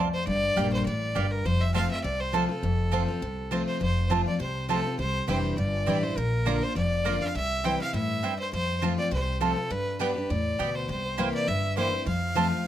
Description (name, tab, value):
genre	bluegrass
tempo	204 BPM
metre	4/4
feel	swing 53% on 8ths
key	F major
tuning	A4 = 440 Hz
part	picked steel-string acoustic guitar	accompaniment	0.0-12.7 s	F2 to G4	-29 LUFS	left 2 dB	none
part	mandolin	stabs	0.0-12.5 s	Bb3 to Bb5	-30 LUFS	right 8 dB	none
part	upright bass	bass	0.0-12.5 s	F1 to G2	-30 LUFS	equal	none
part	clear fiddle	melody	0.1-12.7 s	A4 to G5	-30 LUFS	equal	none
room	light reverb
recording	close, detailed microphones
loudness	-25 LUFS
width	side -11 dB against mid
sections	0.0-3.8 A section; 3.8-12.7 B section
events	none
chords	0.3 Gm; 1.5 F; 5.0 Cadd9; 6.2 Bb; 7.3 C; 8.5 F; 9.7 G; 10.9 C7; 12.1 F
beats	| 0.28 0.57 0.86 1.16 | 1.45 1.75 2.04 2.34 | 2.63 2.93 3.22 3.52 | 3.81 4.11 4.40 4.70 | 4.99 5.29 5.58 5.88 | 6.17 6.46 6.76 7.05 | 7.35 7.64 7.94 8.23 | 8.53 8.82 9.12 9.41 | 9.71 10.01 10.30 10.60 | 10.89 11.19 11.48 11.78 | 12.07 12.37 12.66